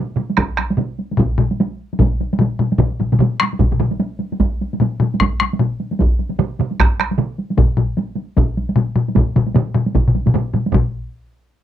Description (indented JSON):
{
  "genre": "japanese traditional, taiko drum ensemble",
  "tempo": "151 BPM",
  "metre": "4/4",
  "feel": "swing 60% on 16ths",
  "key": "none",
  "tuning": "none",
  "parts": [
    { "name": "taiko ensemble", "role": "percussion", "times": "0.2-10.9 s", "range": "none", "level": "-21 LUFS", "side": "right 2 dB", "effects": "none" },
    { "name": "taiko ensemble", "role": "percussion", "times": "0.2-3.9, 6.4-11.1 s", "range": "none", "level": "-20 LUFS", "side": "right 4 dB", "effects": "none" },
    { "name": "taiko ensemble", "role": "percussion", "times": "0.4-10.9 s", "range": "none", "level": "-19 LUFS", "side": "right 1 dB", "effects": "none" },
    { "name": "solo taiko drums", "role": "percussion", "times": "1.2-11.1 s", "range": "none", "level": "-18 LUFS", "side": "left 4 dB", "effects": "none" }
  ],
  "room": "light reverb",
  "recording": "dry, close 1970s-style studio recording",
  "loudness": "-15 LUFS",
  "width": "side -11 dB against mid",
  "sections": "0.0-10.7 A section",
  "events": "speeding up 0.0-11.6",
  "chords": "none",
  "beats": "0.38 0.78 | 1.19 1.59 2.00 2.40 | 2.80 3.20 3.60 4.00 | 4.41 4.80 5.20 5.60 | 6.00 6.40 6.80 7.19 | 7.59 7.98 8.38 8.77 | 9.17 9.56 9.95 10.34 | 10.73"
}